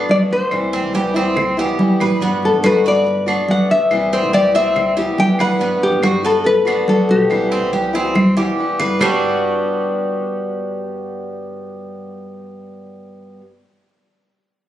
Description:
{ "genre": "latin, Cuban son and guajira", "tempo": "141 BPM", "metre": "4/4", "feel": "straight", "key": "G major", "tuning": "A4 = 438 Hz", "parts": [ { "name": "nylon-string guitar", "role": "melody", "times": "0.0-8.5 s", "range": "G4 to G5", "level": "-16 LUFS", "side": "left 2 dB", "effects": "none" }, { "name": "picked old ladder-braced acoustic guitar", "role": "accompaniment", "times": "0.0-13.5 s", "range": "C3 to F#4", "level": "-23 LUFS", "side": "left 1 dB", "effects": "none" }, { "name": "Cuban tres", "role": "arpeggios", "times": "0.0-13.4 s", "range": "G3 to B4", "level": "-22 LUFS", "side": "right 2 dB", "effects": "none" }, { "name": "congas", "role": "percussion", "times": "0.1-9.1 s", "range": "none", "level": "-19 LUFS", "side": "right 1 dB", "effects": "none" }, { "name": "upright bass", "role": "bass", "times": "0.3-13.4 s", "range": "G1 to G2", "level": "-27 LUFS", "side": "equal", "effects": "none" }, { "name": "claves", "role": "percussion", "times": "0.5-9.1 s", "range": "none", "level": "-24 LUFS", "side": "equal", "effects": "none" } ], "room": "light reverb", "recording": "recorded on a phone in the room, club reverb", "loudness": "-14 LUFS", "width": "side -12 dB against mid", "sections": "0.0-9.0 A section; 9.0-12.4 B section", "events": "drum fill 8.2-9.0", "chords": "0.0 Gmaj7; 0.5 Cmaj7; 2.2 Gmaj7; 3.9 Cmaj7; 5.6 Gmaj7; 7.3 Cmaj7; 9.0 Gmaj7", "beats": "0.10 | 0.52 0.95 1.37 1.79 | 2.22 2.64 3.07 3.49 | 3.91 4.34 4.76 5.19 | 5.61 6.04 6.46 6.88 | 7.31 7.73 8.16 8.58 | 9.01 9.43 9.86 10.28 | 10.71 11.13 11.56 11.98" }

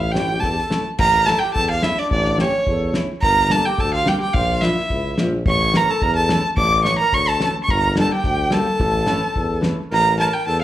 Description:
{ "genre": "klezmer", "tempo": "107 BPM", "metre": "2/4", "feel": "straight", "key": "A phrygian dominant", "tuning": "A4 = 440 Hz", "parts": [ { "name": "rich violin", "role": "melody", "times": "0.0-10.6 s", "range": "C#5 to D6", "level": "-19 LUFS", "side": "right 1 dB", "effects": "slapback echo" }, { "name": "mellow accordion", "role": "second line", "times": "0.0-10.6 s", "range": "C#4 to D5", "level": "-28 LUFS", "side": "left 1 dB", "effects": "slapback echo" }, { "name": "warm tuba", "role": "bass", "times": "0.0-10.6 s", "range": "G1 to E2", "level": "-23 LUFS", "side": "equal", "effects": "none" }, { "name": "nylon-string guitar", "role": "accompaniment", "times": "0.2-10.3 s", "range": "E3 to G4", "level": "-25 LUFS", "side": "left 1 dB", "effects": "slapback echo" }, { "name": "damped 70s drum kit", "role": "drums", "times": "0.2-9.8 s", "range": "crash cymbal, kick drum, snare drum", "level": "-24 LUFS", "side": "left 1 dB", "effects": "none" } ], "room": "moderate club reverb, RT60 0.7 s", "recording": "live gig heard through the venue's PA, club reverb", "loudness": "-16 LUFS", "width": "side -13 dB against mid", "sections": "1.0-9.9 A section", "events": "none", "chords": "0.0 A; 3.2 Gm; 4.3 Bb; 5.5 A; 7.7 Gm; 8.8 A", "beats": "0.42 | 0.98 1.54 | 2.10 2.66 | 3.22 3.78 | 4.34 4.90 | 5.46 6.02 | 6.57 7.13 | 7.69 8.25 | 8.80 9.36 | 9.92 10.47" }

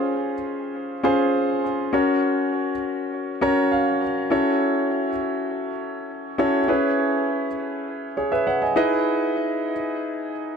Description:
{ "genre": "pop", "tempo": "101 BPM", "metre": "4/4", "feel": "straight", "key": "unclear", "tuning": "A4 = 442 Hz", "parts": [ { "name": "warm concert grand piano", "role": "solo", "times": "0.0-10.6 s", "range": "Db4 to Bb5", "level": "-21 LUFS", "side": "equal", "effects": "tape echo" } ], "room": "moderate plate reverb, RT60 3.3 s", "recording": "dark, warm production", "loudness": "-20 LUFS", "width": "side -6 dB against mid", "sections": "0.0-4.3 A section; 4.3-10.6 B section", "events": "grand piano fill 3.1-4.3", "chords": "0.0 Dbmaj7; 1.9 Gb; 4.3 F#m7; 6.7 C#m7; 8.8 Emaj7", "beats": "0.15 0.74 1.34 | 1.93 2.53 3.12 3.71 | 4.31 4.90 5.50 6.09 | 6.68 7.28 7.87 8.47 | 9.06 9.65 10.25" }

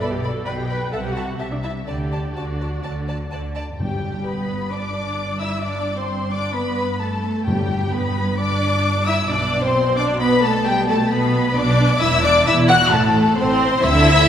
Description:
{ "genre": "quick classical-period movement for symphony orchestra", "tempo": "131 BPM", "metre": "4/4", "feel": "straight", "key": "G major", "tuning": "A4 = 440 Hz", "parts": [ { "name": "warm studio violin section", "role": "melody", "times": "0.0-14.3 s", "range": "D5 to F#6", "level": "-23 LUFS", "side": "left 3 dB", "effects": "none" }, { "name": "warm studio violin section", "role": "second line", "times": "0.0-14.3 s", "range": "G4 to B5", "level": "-23 LUFS", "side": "left 2 dB", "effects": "none" }, { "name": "dark studio viola section", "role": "accompaniment", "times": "0.0-14.3 s", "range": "G3 to B4", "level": "-24 LUFS", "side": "right 1 dB", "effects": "none" }, { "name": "dark studio double bass section", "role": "bass", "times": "0.0-14.2 s", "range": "E1 to D2", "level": "-25 LUFS", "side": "right 1 dB", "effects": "none" }, { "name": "warm studio cello section", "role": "bass", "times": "0.0-14.2 s", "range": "E2 to D3", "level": "-25 LUFS", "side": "right 1 dB", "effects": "none" }, { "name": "timpani", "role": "percussion", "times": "3.8-4.5, 7.5-8.1, 13.8-14.3 s", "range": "G2 to D3", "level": "-28 LUFS", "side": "equal", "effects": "none" } ], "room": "wet concert hall reverb, RT60 2.0 s", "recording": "recorded in a church or concert hall", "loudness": "-17 LUFS", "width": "side -9 dB against mid", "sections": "0.0-3.8 A section; 3.8-14.3 B section", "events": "none", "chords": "0.0 G/B; 0.9 Am/C; 1.9 D; 3.8 G; 9.3 Bm; 12.0 Dadd9/E; 12.9 Am", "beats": "| 0.01 0.47 0.93 1.40 | 1.87 2.36 2.84 3.32 | 3.79 4.26 4.72 5.18 | 5.63 6.09 6.55 7.01 | 7.47 7.93 8.39 8.85 | 9.30 9.76 10.21 10.66 | 11.11 11.56 12.02 12.47 | 12.93 13.38 13.84" }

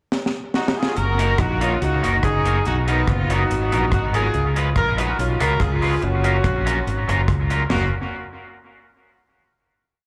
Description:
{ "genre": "ska", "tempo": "143 BPM", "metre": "4/4", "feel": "straight", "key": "F# major", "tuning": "A4 = 440 Hz", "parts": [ { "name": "deep reggae drum kit", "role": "drums", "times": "0.1-7.8 s", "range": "hi-hat, kick drum, rim click, snare drum, splash cymbal, toms", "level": "-26 LUFS", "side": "equal", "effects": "tape echo" }, { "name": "warm horn section", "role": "melody", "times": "0.5-7.9 s", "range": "B3 to A#4", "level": "-26 LUFS", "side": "equal", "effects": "tape echo, plate reverb" }, { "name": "fingered electric bass", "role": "bass", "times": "1.0-7.9 s", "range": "F#1 to C#2", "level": "-24 LUFS", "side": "equal", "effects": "none" }, { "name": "electric guitar at the edge of break-up", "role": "accompaniment", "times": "1.2-7.8 s", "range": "F#3 to B4", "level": "-27 LUFS", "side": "equal", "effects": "subtle chorus, tape echo, plate reverb, slapback echo" } ], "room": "light reverb", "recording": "live gig heard through the venue's PA, club reverb", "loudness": "-20 LUFS", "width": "mono", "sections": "0.0-1.0 pickup bar; 1.0-7.7 A section; 7.7-9.4 final chord", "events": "drum fill 0.1-1.0", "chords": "0.0 D#m; 1.0 F#6; 2.7 Bmaj7; 4.3 C#7; 6.0 F#maj7", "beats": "0.12 0.55 | 0.97 1.39 1.81 2.24 | 2.66 3.08 3.50 3.92 | 4.34 4.76 5.18 5.60 | 6.02 6.44 6.86 7.28 | 7.70" }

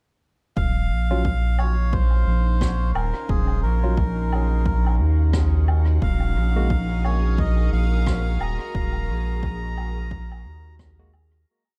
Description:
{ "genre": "ambient dub", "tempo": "88 BPM", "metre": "4/4", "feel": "swing 60% on 16ths", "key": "Eb dorian", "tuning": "A4 = 440 Hz", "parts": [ { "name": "melodica", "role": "melody", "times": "0.6-10.8 s", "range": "Ab4 to Bb5", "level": "-34 LUFS", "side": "equal", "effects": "dub echo" }, { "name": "soft additive organ-like pad", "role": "sustained chords", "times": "1.5-11.5 s", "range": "Db4 to F5", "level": "-37 LUFS", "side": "equal", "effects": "ensemble chorus, built-in reverb" }, { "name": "round analog bass", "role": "bass", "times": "0.6-11.4 s", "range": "Eb1 to Eb2", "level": "-23 LUFS", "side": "equal", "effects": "none" }, { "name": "electronic kick drum", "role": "drums", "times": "0.6-11.0 s", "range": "none", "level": "-28 LUFS", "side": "equal", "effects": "overdrive" }, { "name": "overdriven tine electric piano", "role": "stabs", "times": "1.1-6.7, 11.0-11.1 s", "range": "Gb3 to Gb4", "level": "-35 LUFS", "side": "equal", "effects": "vintage 12-bit sampler grit, dub echo" }, { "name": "woodblock and rim click", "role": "drums", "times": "1.6-11.3 s", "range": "none", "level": "-36 LUFS", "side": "equal", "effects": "dub echo" } ], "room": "little or no reverb", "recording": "dark, warm production", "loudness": "-22 LUFS", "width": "mono", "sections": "0.6-11.5 groove", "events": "fade-in on ambient pad 0.6-11.5; fade-out 7.8-11.5", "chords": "0.6 Ebm9; 6.0 Gbadd9/Eb", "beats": "| 0.57 1.25 1.93 2.61 | 3.29 3.98 4.66 5.34 | 6.02 6.70 7.38 8.07 | 8.75 9.43 10.11 10.79" }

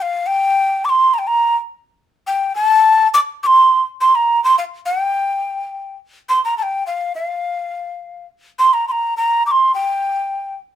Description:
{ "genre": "andean folk", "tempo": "104 BPM", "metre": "2/4", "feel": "straight", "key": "G minor", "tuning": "A4 = 441 Hz", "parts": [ { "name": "breathy large quena", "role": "solo", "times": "0.0-10.6 s", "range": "F5 to D6", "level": "-14 LUFS", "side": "equal", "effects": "none" } ], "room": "moderate studio reverb, RT60 0.6 s", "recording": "minimal, uncompressed stereo recording", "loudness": "-14 LUFS", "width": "side -10 dB against mid", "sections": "0.0-6.3 A section; 6.3-10.8 B section", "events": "none", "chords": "none", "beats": "| 0.53 1.10 | 1.68 2.25 | 2.83 3.40 | 3.98 4.55 | 5.13 5.70 | 6.28 6.85 | 7.43 8.01 | 8.58 9.16 | 9.73 10.31" }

